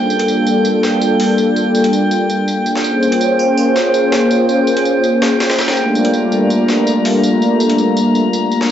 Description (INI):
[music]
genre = drum and bass, jungle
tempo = 164 BPM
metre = 4/4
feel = straight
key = unclear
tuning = A4 = 443 Hz
[part]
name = lush unison pad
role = sustained chords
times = 0.0-8.7 s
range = G3 to C5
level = -12 LUFS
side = equal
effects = chorus, vintage 12-bit sampler grit
[part]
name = drifting glass-harmonics texture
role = texture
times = 0.0-8.7 s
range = G5 to Bb5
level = -21 LUFS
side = right 2 dB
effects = chorus, built-in reverb
[part]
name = breakbeat sampler-style drum kit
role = drums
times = 0.1-8.7 s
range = hi-hat, snare drum, tambourine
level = -23 LUFS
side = left 1 dB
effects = high-pass filter on perc, high-pass filter on hats, high-pass filter on snare, high-pass filter on room
[sound]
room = moderate plate reverb, RT60 2.1 s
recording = vinyl crackle, nothing above 7.8 kHz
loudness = -12 LUFS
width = side -10 dB against mid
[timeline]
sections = 0.0-8.7 A section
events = none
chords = 0.0 Gm7; 2.8 Bbm7; 5.8 Gm7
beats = 0.28 0.65 1.01 | 1.38 1.75 2.11 2.48 | 2.84 3.21 3.58 3.94 | 4.31 4.67 5.04 5.41 | 5.77 6.14 6.50 6.87 | 7.24 7.60 7.97 8.33 | 8.70